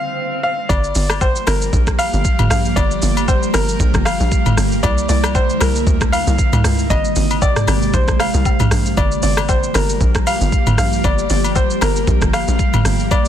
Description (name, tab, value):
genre	amapiano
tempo	116 BPM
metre	4/4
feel	swing 55% on 16ths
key	G dorian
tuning	A4 = 438 Hz
part	warm baby grand piano	melody	0.0-13.3 s	Bb4 to F5	-21 LUFS	left 1 dB	digital delay
part	swell	sound effects	0.0-0.7 s	none	-28 LUFS	right 1 dB	none
part	ethereal airy pad	sustained chords	0.7-13.3 s	C3 to G4	-22 LUFS	equal	ensemble chorus, built-in reverb
part	tight log drum bass	bass	0.7-13.3 s	G1 to D2	-19 LUFS	equal	none
part	smooth R&B drum kit	drums	0.7-13.3 s	hi-hat, kick drum, rim click, shaker, toms	-18 LUFS	equal	overdrive
part	agogo bells and woodblock	percussion	0.7-13.2 s	none	-27 LUFS	left 10 dB	none
room	digital ambience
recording	dense, heavily limited modern master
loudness	-14 LUFS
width	side -10 dB against mid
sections	0.7-13.3 A section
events	swell 0.0-0.7; stop 0.0-0.7; drop 0.7-13.3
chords	0.0 N.C.; 0.7 Gm7; 4.8 C9; 6.4 Eb7; 6.9 Abmaj9; 8.5 D7alt; 9.0 Gm7